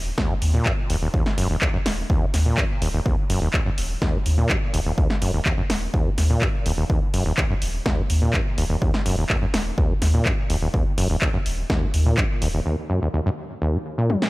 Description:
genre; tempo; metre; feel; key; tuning
acid house; 125 BPM; 4/4; straight; Eb minor; A4 = 440 Hz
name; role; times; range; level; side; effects
warm sub bass; bass; 0.0-12.6 s; Eb1 to Eb2; -23 LUFS; equal; sidechain pumping
overdriven acid bass; riff; 0.2-14.2 s; Eb2 to Bb2; -24 LUFS; equal; tube saturation, analog delay
electronic kick drum; drums; 0.2-12.3 s; none; -23 LUFS; equal; none
punchy analog drum machine; drums; 0.2-14.3 s; handclaps, hi-hat, snare drum, toms; -27 LUFS; equal; none
room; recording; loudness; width
light reverb, digital ambience; none; -20 LUFS; side -20 dB against mid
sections
0.0-14.3 A section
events
drum fill 14.1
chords
none

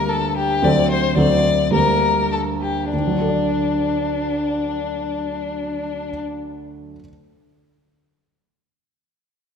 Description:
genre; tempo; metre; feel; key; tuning
quick classical-period movement for piano trio; 94-114 BPM; 2/4; straight; D major; A4 = 442 Hz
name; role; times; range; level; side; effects
clear violin; melody; 0.0-6.2 s; D4 to D5; -21 LUFS; left 5 dB; none
warm concert grand piano; accompaniment; 0.0-7.1 s; D2 to D5; -21 LUFS; right 2 dB; none
room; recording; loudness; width
wet concert hall reverb, RT60 1.8 s; none; -18 LUFS; side -7 dB against mid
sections
0.0-2.9 A section; 2.9-5.4 B section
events
slowing down 0.1-2.9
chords
0.0 Gm/D; 0.6 D7; 1.7 Gm/D; 2.9 D

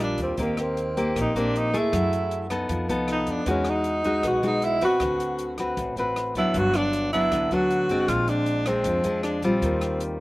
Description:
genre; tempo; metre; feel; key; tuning
bossa nova; 156 BPM; 4/4; straight; unclear; A4 = 440 Hz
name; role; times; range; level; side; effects
mellow tenor saxophone; melody; 0.0-10.0 s; Bb3 to F#4; -24 LUFS; right 1 dB; slapback echo
nylon-string guitar; accompaniment; 0.0-10.2 s; G2 to B4; -25 LUFS; left 1 dB; none
upright bass; bass; 0.0-10.2 s; G1 to Gb2; -32 LUFS; equal; none
open jazz drum kit; drums; 0.2-10.1 s; hi-hat, kick drum, rim click; -37 LUFS; equal; none
room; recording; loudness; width
little or no reverb; recorded outdoors, with no room sound; -22 LUFS; side -19 dB against mid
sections
0.4-10.2 A section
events
none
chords
0.4 Eb6; 1.9 Gbm9; 2.7 F7#11; 3.5 Emaj9; 5.0 D6; 6.5 Gmaj7; 8.1 Bb9; 9.6 Eb69

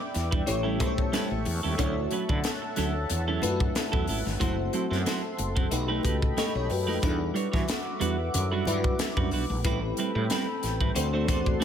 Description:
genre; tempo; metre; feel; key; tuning
polished 1980s jazz-funk pop; 92 BPM; 4/4; swing 54% on 16ths; unclear; A4 = 440 Hz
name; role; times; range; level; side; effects
bell-like FM electric piano; accompaniment; 0.0-11.6 s; F#3 to D#5; -32 LUFS; left 2 dB; ensemble chorus
chorused pulse-width pad; sustained chords; 0.0-11.6 s; C4 to D6; -35 LUFS; left 1 dB; none
clean electric guitar; riff; 0.0-11.6 s; F#3 to C#5; -32 LUFS; right 7 dB; wide subtle chorus
crisp fusion drum kit; drums; 0.1-11.6 s; hi-hat, kick drum, snare drum; -30 LUFS; equal; gated reverb
woody fretless electric bass; bass; 0.2-11.6 s; F#1 to E3; -30 LUFS; equal; none
congas; percussion; 0.3-11.6 s; none; -42 LUFS; left 2 dB; none
room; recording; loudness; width
light reverb, small room ambience; none; -25 LUFS; side -8 dB against mid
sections
0.0-11.6 A section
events
none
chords
0.5 A7; 1.8 Dmaj9; 4.4 F#m7b5; 5.7 B7b13; 7.0 Em9; 9.7 Am9; 11.0 D7

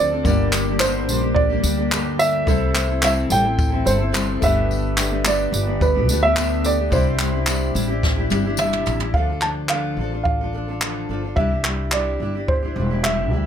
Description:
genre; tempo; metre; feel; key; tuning
acoustic pop; 108 BPM; 4/4; straight; C major; A4 = 441 Hz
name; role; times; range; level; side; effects
dark upright piano; melody; 0.0-13.5 s; B4 to A5; -23 LUFS; right 3 dB; none
clear grand piano; accompaniment; 0.0-9.2 s; A3 to D5; -32 LUFS; left 7 dB; none
fingerpicked steel-string acoustic guitar; accompaniment; 0.0-13.5 s; G2 to A4; -24 LUFS; left 2 dB; double-tracked left and right
upright bass; bass; 0.0-13.5 s; E1 to D2; -24 LUFS; equal; none
jazz brush drum kit; drums; 0.2-13.2 s; handclaps, kick drum, snare drum, tambourine, toms; -23 LUFS; equal; none
tambourine; percussion; 0.3-9.0 s; none; -34 LUFS; left 11 dB; none
room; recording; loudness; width
light reverb; none; -18 LUFS; side -8 dB against mid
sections
0.0-9.1 A section; 9.1-13.5 B section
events
drum fill 8.0-9.1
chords
0.2 Gm; 2.5 C6; 4.4 Gadd9; 6.9 Cadd9; 9.1 Dm; 11.4 Cadd9

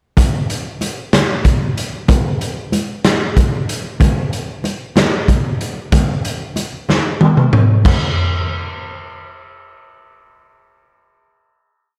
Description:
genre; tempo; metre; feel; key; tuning
rock; 62 BPM (dotted quarters); 6/8; straight; none; none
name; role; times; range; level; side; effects
raw garage drum kit; drums; 0.2-8.0 s; crash cymbal, hi-hat, kick drum, snare drum, toms; -17 LUFS; equal; none
congas; percussion; 0.2-8.1 s; none; -24 LUFS; equal; none
room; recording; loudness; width
light reverb; none; -16 LUFS; mono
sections
0.2-7.8 pre-chorus; 7.8-11.7 final hit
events
drum fill 6.9-7.8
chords
none

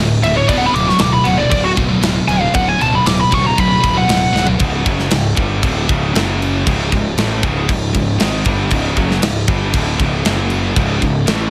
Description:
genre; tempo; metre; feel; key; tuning
heavy metal; 117 BPM; 4/4; straight; unclear; A4 = 440 Hz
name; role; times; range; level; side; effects
scooped high-gain guitar; riff; 0.0-11.5 s; C#2 to B3; -21 LUFS; equal; distortion
scooped high-gain guitar; riff; 0.0-4.6 s; D2 to B3; -23 LUFS; equal; distortion
fuzz picked electric bass; bass; 0.0-11.5 s; C#1 to A1; -22 LUFS; equal; overdrive
high-gain lead guitar; melody; 0.2-4.4 s; F#4 to D6; -19 LUFS; equal; distortion, tape echo
tight metal drum kit; drums; 0.2-11.4 s; crash cymbal, kick drum, snare drum, toms; -21 LUFS; equal; none
room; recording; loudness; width
small room ambience; none; -15 LUFS; mono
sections
0.0-4.6 A section; 4.6-11.5 B section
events
lead electric guitar solo 0.0-4.6; drum fill 4.3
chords
0.5 Bm/D; 4.6 C#5; 6.1 F#5; 6.7 C#5; 10.3 F#5; 10.8 C#m

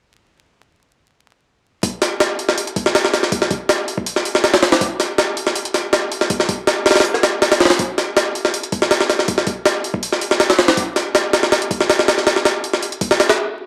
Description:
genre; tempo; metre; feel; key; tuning
drum and bass; 161 BPM; 4/4; straight; none; none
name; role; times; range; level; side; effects
jungle sampler-style drum kit; drums; 1.8-13.4 s; hi-hat, kick drum, snare drum; -17 LUFS; equal; high-pass filter on kick, high-pass filter on hats, high-pass filter on snare, high-pass filter on room
room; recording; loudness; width
wet spring reverb, RT60 1.2 s; vinyl crackle; -17 LUFS; mono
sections
1.8-13.7 A section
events
stop 13.4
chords
none

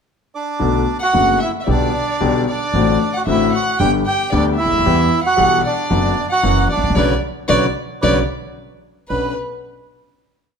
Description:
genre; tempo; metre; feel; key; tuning
tango; 113 BPM; 4/4; rubato; B minor; A4 = 440 Hz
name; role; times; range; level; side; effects
bandoneon; melody; 0.3-9.3 s; D4 to G5; -18 LUFS; right 4 dB; none
warm concert grand piano; accompaniment; 0.6-9.3 s; F#1 to G4; -19 LUFS; left 6 dB; none
upright bass; bass; 0.6-9.3 s; F#1 to E2; -21 LUFS; right 2 dB; none
warm violin; second line; 1.0-9.3 s; B4 to G5; -23 LUFS; left 2 dB; none
room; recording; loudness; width
moderate recital hall reverb, RT60 1.4 s; minimal, uncompressed stereo recording; -14 LUFS; side -6 dB against mid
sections
0.0-0.6 pickup bar; 0.6-9.1 A section; 9.1-10.6 final chord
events
band accent 7.0-9.1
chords
0.0 N.C.; 0.6 Bm7; 1.7 G/B; 2.7 D7/A; 3.8 G; 4.8 Em; 5.9 Bm/F#; 6.4 F#7; 7.0 Bmadd9; 8.6 N.C.; 9.1 Bmadd9

